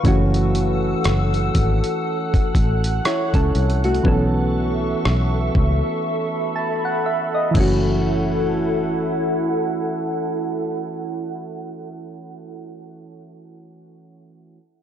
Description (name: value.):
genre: contemporary R&B.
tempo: 60 BPM.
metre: 4/4.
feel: swing 58% on 16ths.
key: F# minor.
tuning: A4 = 440 Hz.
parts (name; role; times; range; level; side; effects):
soft electric-piano-like synth keys; accompaniment; 0.0-14.6 s; E3 to A5; -23 LUFS; right 1 dB; chorus, low-pass filter.
glassy FM pad; sustained chords; 0.0-12.3 s; E4 to F#6; -25 LUFS; equal; ensemble chorus, built-in reverb, low-pass filter.
dusty soul sampler-style drum kit; drums; 0.0-7.8 s; crash cymbal, hi-hat, kick drum, rim click; -21 LUFS; equal; none.
fingered electric bass; bass; 0.1-12.3 s; F#1 to C#2; -20 LUFS; equal; none.
room: light reverb.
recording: dry, gritty hardware recording, cassette tape.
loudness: -18 LUFS.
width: side -10 dB against mid.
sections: 0.0-8.0 A section; 8.0-12.0 B section.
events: drums muted 6.0-8.0; synth keys fill 6.0-8.0.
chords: 0.0 F#m7; 4.0 B9sus4; 7.5 F#m7.